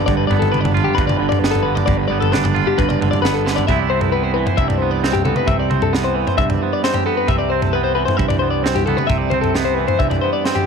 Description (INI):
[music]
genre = math rock and midwest emo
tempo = 133 BPM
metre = 4/4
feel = straight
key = C major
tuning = A4 = 440 Hz
[part]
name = twangy electric guitar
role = accompaniment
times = 0.0-10.7 s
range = G2 to F4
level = -20 LUFS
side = right 13 dB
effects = none
[part]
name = twelve-string electric guitar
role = arpeggios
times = 0.0-10.7 s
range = G4 to E5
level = -20 LUFS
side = left 10 dB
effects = none
[part]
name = fuzz fingered electric bass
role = bass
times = 0.1-10.2 s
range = G1 to C2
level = -23 LUFS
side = equal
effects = overdrive
[part]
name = crisp fusion drum kit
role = drums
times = 0.1-10.7 s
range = kick drum, snare drum, toms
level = -21 LUFS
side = left 1 dB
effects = none
[sound]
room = light reverb, small room ambience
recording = 1960s-style stereo with parts hard left and right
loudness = -15 LUFS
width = side -6 dB against mid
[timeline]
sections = 0.0-3.7 A section; 3.7-10.7 B section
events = drum fill 3.5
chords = 0.0 G7; 3.7 Cmaj7